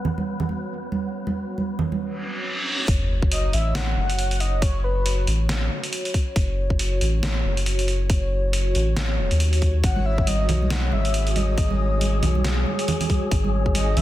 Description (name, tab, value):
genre	deep dubstep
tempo	138 BPM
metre	4/4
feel	swing 58% on 16ths, half-time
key	F# dorian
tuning	A4 = 439 Hz
part	dark analog pad	sustained chords	0.0-14.0 s	F#4 to C#5	-31 LUFS	equal	chorus
part	congas	percussion	0.0-2.0, 10.0-14.0 s	none	-27 LUFS	right 4 dB	none
part	wind-like tuned noise texture	texture	0.0-2.0, 10.7-14.0 s	G#3 to B4	-32 LUFS	left 2 dB	built-in reverb
part	reverse cymbal and sub drop	sound effects	2.2-4.6 s	none	-28 LUFS	equal	none
part	soft dub sub bass	bass	2.9-14.0 s	E1 to D#2	-22 LUFS	equal	none
part	electronic kick drum	drums	2.9-13.7 s	none	-22 LUFS	equal	none
part	trip hop sampler-style drum kit	drums	2.9-14.0 s	hi-hat, snare drum	-28 LUFS	equal	none
part	breathy flute-like synth lead	melody	3.3-5.3, 9.8-14.0 s	B4 to F#5	-29 LUFS	left 1 dB	analog chorus, dub echo
room	digital ambience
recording	dense, heavily limited modern master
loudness	-20 LUFS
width	side -14 dB against mid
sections	0.0-2.9 A section; 2.9-14.0 B section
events	reverse cymbal 2.2-2.9; drop 2.9-14.0; impact 2.9-4.6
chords	0.0 Bsus2; 2.9 F#m; 9.8 G#m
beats	0.27 0.71 | 1.14 1.58 2.01 2.45 | 2.88 3.32 3.75 4.18 | 4.62 5.05 5.49 5.92 | 6.36 6.79 7.23 7.66 | 8.10 8.53 8.97 9.40 | 9.84 10.27 10.71 11.14 | 11.58 12.01 12.45 12.88 | 13.32 13.75